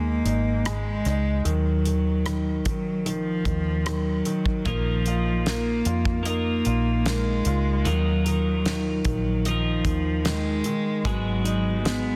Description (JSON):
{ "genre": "pop ballad", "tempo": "75 BPM", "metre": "4/4", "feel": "straight", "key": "Eb minor", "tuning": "A4 = 440 Hz", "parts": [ { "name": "dark cello", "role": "melody", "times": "0.0-12.2 s", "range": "F3 to Cb4", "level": "-29 LUFS", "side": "equal", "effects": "none" }, { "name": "clear concert grand piano", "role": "accompaniment", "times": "0.0-12.2 s", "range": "Eb3 to F4", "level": "-32 LUFS", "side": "equal", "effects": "none" }, { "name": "vintage muted fingered electric bass", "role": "bass", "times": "0.0-12.2 s", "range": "Ab1 to F2", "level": "-28 LUFS", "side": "equal", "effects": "none" }, { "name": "damped 70s drum kit", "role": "drums", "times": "0.3-12.0 s", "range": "hi-hat, kick drum, rim click, snare drum", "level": "-32 LUFS", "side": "equal", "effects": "soft clipping on snare" }, { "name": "twelve-string electric guitar", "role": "arpeggios", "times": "4.7-12.2 s", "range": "Ab2 to Bb4", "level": "-34 LUFS", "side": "equal", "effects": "none" } ], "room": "light reverb, small room reverb", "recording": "dense, heavily limited modern master", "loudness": "-24 LUFS", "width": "mono", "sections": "0.0-12.2 A section", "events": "none", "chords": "0.0 Ab5; 1.5 Ebmadd9; 4.7 Bbsus4; 7.9 Ebmadd9; 11.1 Abm7", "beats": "0.66 | 1.46 2.26 3.06 3.86 | 4.66 5.46 6.26 7.06 | 7.86 8.66 9.46 10.26 | 11.06 11.86" }